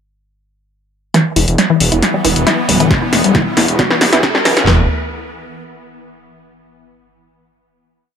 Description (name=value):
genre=driving peak-time techno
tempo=136 BPM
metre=4/4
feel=straight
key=E minor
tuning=A4 = 438 Hz
part: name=resonant blip pluck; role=riff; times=1.1-4.9 s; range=E3 to E4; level=-16 LUFS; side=left 1 dB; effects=chorus, tube saturation, sidechain pumping, dub echo
part: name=swarming drone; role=drone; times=1.7-4.7 s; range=E3 to B3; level=-22 LUFS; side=left 2 dB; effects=built-in reverb, sidechain pumping
part: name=punchy analog drum machine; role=drums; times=1.1-4.7 s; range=hi-hat, snare drum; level=-14 LUFS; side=equal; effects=none
part: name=riser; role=sound effects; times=2.6-4.7 s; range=none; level=-23 LUFS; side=equal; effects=none
part: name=detuned saw bass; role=bass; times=1.4-4.9 s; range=D1 to E2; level=-16 LUFS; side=equal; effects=tube saturation, sidechain pumping
part: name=punchy analog drum machine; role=drums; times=2.9-4.8 s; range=handclaps, kick drum, snare drum, toms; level=-16 LUFS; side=right 1 dB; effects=none
room=light reverb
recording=high-pass filter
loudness=-11 LUFS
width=side -7 dB against mid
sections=1.1-4.7 build; 4.7-6.4 final chord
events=build-up 1.1-4.7; drum fill 1.1-4.7; filter sweep on synth arpeggio sound 1.1-4.7; riser 2.6-4.7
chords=1.1 Em; 4.7 N.C.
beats=| 1.14 1.58 2.03 2.47 | 2.91 3.35 3.79 4.23 | 4.67